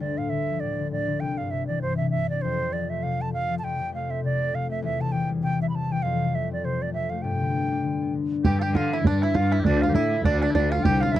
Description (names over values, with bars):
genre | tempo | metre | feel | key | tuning
celtic folk, Celtic reel | 199 BPM | 4/4 | swing 57% on 8ths | G mixolydian | A4 = 440 Hz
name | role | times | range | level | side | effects
bright wooden flute | melody | 0.0-11.2 s | C5 to B5 | -28 LUFS | right 3 dB | none
concert harp | accompaniment | 0.0-11.2 s | C2 to B4 | -26 LUFS | left 4 dB | none
bluegrass banjo | second line | 8.4-11.2 s | D4 to G4 | -33 LUFS | right 7 dB | none
mellow small bagpipes | second line | 8.4-11.2 s | D4 to A4 | -34 LUFS | left 3 dB | none
bodhran | percussion | 8.4-11.2 s | none | -23 LUFS | right 3 dB | none
rich cello | bass | 8.5-11.2 s | C2 to D3 | -24 LUFS | right 1 dB | none
room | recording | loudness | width
light reverb | dry, close 1970s-style studio recording | -22 LUFS | side -13 dB against mid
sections
0.0-8.4 A section; 8.4-11.2 A section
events
none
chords
0.0 Dm; 1.2 C; 2.4 F; 4.8 C/E; 6.0 F; 7.2 G; 9.7 Dm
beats
| 0.00 0.30 0.60 0.91 | 1.21 1.51 1.81 2.11 | 2.42 2.72 3.02 3.32 | 3.62 3.93 4.23 4.53 | 4.83 5.13 5.43 5.74 | 6.04 6.34 6.64 6.94 | 7.25 7.55 7.85 8.15 | 8.45 8.75 9.05 9.35 | 9.65 9.95 10.25 10.55 | 10.85 11.15